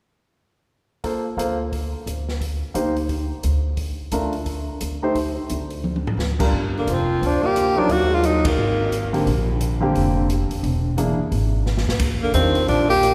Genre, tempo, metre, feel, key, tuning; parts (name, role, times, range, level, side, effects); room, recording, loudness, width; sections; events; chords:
jazz, small-group swing and bop; 175 BPM; 4/4; swing 62% on 8ths; G minor; A4 = 438 Hz
warm concert grand piano; accompaniment; 1.0-12.5 s; D3 to C5; -28 LUFS; equal
open jazz drum kit; drums; 1.0-13.1 s; crash cymbal, hi-hat, kick drum, ride cymbal, snare drum, toms; -31 LUFS; equal
upright bass; bass; 1.4-13.1 s; E1 to A#2; -26 LUFS; equal
warm tenor saxophone; melody; 6.8-9.1, 12.2-13.1 s; Bb3 to G4; -22 LUFS; equal
breathy alto saxophone; second line; 6.8-9.1, 12.2-13.1 s; D3 to Bb3; -27 LUFS; equal
wet church reverb, RT60 2.9 s; recorded in a church or concert hall; -22 LUFS; mono
1.0-6.5 A section; 6.5-13.1 B section
drum fill 5.8-6.2, 11.7-12.0; band accent 8.4
1.0 Dm7; 2.4 Cm7; 3.1 N.C.; 3.8 Bbmaj7; 5.2 N.C.; 5.8 Dmadd11; 6.5 Gm7; 7.9 Ebm; 8.6 Abadd9; 9.3 Bb69; 10.6 E7#11; 12.0 Ebmaj9